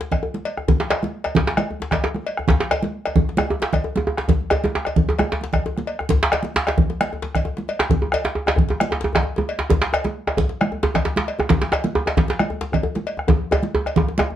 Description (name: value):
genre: west african traditional, West African drum ensemble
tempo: 133 BPM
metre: 4/4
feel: swing 53% on 16ths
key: none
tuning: none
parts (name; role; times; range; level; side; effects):
- djembe; percussion; 0.0-14.4 s; none; -25 LUFS; left 3 dB; none
- bombo; percussion; 0.1-14.3 s; none; -24 LUFS; equal; none
- congas; percussion; 0.1-14.3 s; none; -23 LUFS; right 3 dB; none
- cowbell; percussion; 0.1-14.3 s; none; -27 LUFS; left 3 dB; none
- djembe; percussion; 0.8-14.3 s; none; -22 LUFS; right 2 dB; none
room: moderate studio reverb, RT60 0.6 s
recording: worn, warbling old tape, cassette tape, warbly pitch drift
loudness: -18 LUFS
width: side -11 dB against mid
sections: 0.7-14.4 A section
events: drum fill 13.3-14.4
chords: none